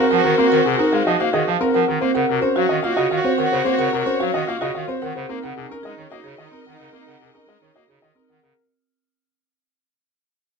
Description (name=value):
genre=classical, minimalist pattern music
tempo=110 BPM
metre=3/4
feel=straight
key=unclear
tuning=A4 = 440 Hz
part: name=warm grand piano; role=melody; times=0.0-8.6 s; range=Ab4 to Gb5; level=-22 LUFS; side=left 4 dB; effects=none
part: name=warm soprano saxophone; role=second line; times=0.0-8.3 s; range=Eb4 to Gb4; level=-27 LUFS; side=right 3 dB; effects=none
part: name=warm symphonic string section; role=sustained chords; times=0.0-8.4 s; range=Gb4 to Eb5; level=-28 LUFS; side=left 2 dB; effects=none
part: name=buzzing marimba with medium mallets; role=arpeggios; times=0.0-8.5 s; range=C4 to Bb4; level=-22 LUFS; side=right 4 dB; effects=none
part: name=pipe organ, clarinet reed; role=accompaniment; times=0.1-8.5 s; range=C3 to Bb3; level=-26 LUFS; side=right 1 dB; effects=none
room=light reverb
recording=close, detailed microphones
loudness=-17 LUFS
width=side -5 dB against mid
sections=0.0-8.6 A section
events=fade-out 0.0-8.6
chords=0.0 Ab13; 2.0 Ebm9; 5.3 Gb69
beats=| 0.38 0.93 1.47 | 2.02 2.56 3.11 | 3.65 4.20 4.74 | 5.29 5.83 6.38 | 6.92 7.47 8.02